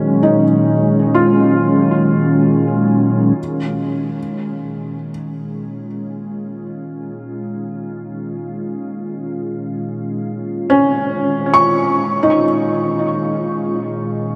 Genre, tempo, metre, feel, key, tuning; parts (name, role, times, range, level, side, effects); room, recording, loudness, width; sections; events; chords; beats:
ambient; free time; Bb minor; A4 = 440 Hz
glassy FM pad; sustained chords; 0.0-14.4 s; Bb2 to F4; -20 LUFS; equal; ensemble chorus, built-in reverb
felt-muted upright piano; arpeggios; 0.0-14.4 s; Db4 to Db6; -19 LUFS; equal; analog delay
wet huge ambient reverb, RT60 7.0 s; dreamy mix soaked in reverb; -17 LUFS; mono
0.0-3.4 A section; 3.4-14.4 B section
fade-in on ambient pad 3.4-14.4
0.0 Ebm/Bb; 3.4 Bbm
free time